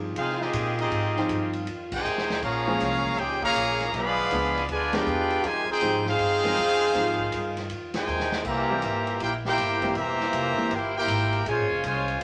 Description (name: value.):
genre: jazz, big band swing.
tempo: 159 BPM.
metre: 4/4.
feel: swing 65% on 8ths.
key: F minor.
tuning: A4 = 440 Hz.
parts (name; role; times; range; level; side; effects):
warm grand piano; accompaniment; 0.0-10.7 s; Eb3 to G5; -33 LUFS; equal; none.
warm saxophone section; sustained chords; 0.0-12.2 s; Bb2 to Ab4; -40 LUFS; equal; none.
upright bass; bass; 0.0-12.2 s; E1 to C3; -36 LUFS; equal; none.
mellow trombone section; second line; 0.1-12.2 s; C3 to Ab4; -31 LUFS; equal; none.
brilliant trumpet section; melody; 0.2-12.2 s; C4 to B5; -29 LUFS; equal; none.
swinging big-band drum kit; drums; 0.2-12.2 s; crash cymbal, hi-hat, kick drum, ride cymbal, snare drum; -40 LUFS; equal; none.
room: wet studio ambience, RT60 0.5 s.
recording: none.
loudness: -26 LUFS.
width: mono.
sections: 0.0-12.2 A section.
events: band accent 1.9, 4.9, 7.9; drum fill 2.0-2.4, 8.1-8.5.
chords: 0.0 Fm9; 2.4 Bbm9; 3.9 Bdim7; 5.4 Fm9; 8.5 C7; 11.5 Bbm9.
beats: 0.16 0.54 | 0.92 1.30 1.67 2.05 | 2.43 2.81 3.18 3.56 | 3.94 4.31 4.69 5.07 | 5.44 5.82 6.19 6.57 | 6.95 7.32 7.70 8.07 | 8.45 8.83 9.20 9.58 | 9.96 10.33 10.71 11.08 | 11.46 11.84 12.21.